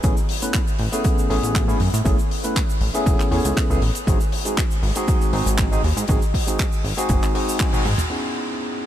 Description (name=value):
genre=nu-disco, nu disco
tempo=119 BPM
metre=4/4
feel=straight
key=unclear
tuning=A4 = 440 Hz
part: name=barky tine electric piano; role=accompaniment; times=0.0-8.9 s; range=G#3 to B4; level=-24 LUFS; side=equal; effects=lush chorus, low-pass filter, ping-pong delay
part: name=chorused synth bass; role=bass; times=0.0-7.9 s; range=E1 to A2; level=-22 LUFS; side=equal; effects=none
part: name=damped 70s drum kit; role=drums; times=0.0-8.1 s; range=handclaps, hi-hat, shaker, toms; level=-27 LUFS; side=equal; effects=low-pass filter on hats, low-pass filter on toms, low-pass filter on snare, low-pass filter on perc, low-pass filter on room
part: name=electronic kick drum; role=drums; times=0.0-7.7 s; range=none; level=-21 LUFS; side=equal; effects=overdrive
room=light reverb, small room ambience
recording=none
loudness=-18 LUFS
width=side -12 dB against mid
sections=0.0-8.1 A section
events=band accent 7.6; drum fill 7.7-8.1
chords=0.0 Amaj7; 4.1 G#7; 8.1 C#m7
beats=| 0.04 0.54 1.05 1.55 | 2.05 2.56 3.06 3.57 | 4.07 4.58 5.08 5.58 | 6.09 6.59 7.10 7.60 | 8.11 8.61